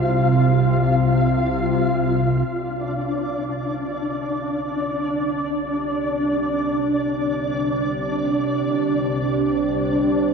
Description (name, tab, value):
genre	dark ambient drone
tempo	free time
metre	none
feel	none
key	unclear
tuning	A4 = 436 Hz
part	bowed-like drone	drone	0.0-10.3 s	C2 to C3	-23 LUFS	equal	built-in reverb
part	flickering grainy texture	texture	0.0-10.3 s	D4 to F5	-23 LUFS	left 1 dB	built-in reverb
part	deep dark ambient pad	sustained chords	4.0-10.3 s	D4 to C5	-23 LUFS	right 3 dB	chorus, built-in reverb
room	wet huge ambient reverb, RT60 9.1 s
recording	dark, warm production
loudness	-19 LUFS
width	side -5 dB against mid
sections	0.0-2.5 A section; 2.5-10.3 B section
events	fade-in on synth drone 2.5-10.3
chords	0.0 Csus4; 2.5 Csus2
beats	free time